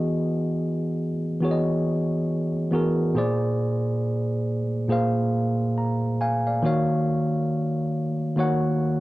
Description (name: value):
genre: R&B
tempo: 69 BPM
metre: 4/4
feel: swing 59% on 16ths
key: unclear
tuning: A4 = 438 Hz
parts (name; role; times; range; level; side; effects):
- mellow tine electric piano; solo; 0.0-9.0 s; Bb2 to Bb5; -22 LUFS; equal; overdrive, slapback echo
room: digital ambience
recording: dry, close 1970s-style studio recording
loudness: -22 LUFS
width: side -18 dB against mid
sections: 0.0-9.0 A section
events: none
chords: 0.0 Emaj7; 3.2 Bb7; 6.6 Ebm7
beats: 0.55 1.42 2.29 | 3.15 4.03 4.89 5.76 | 6.63 7.50 8.37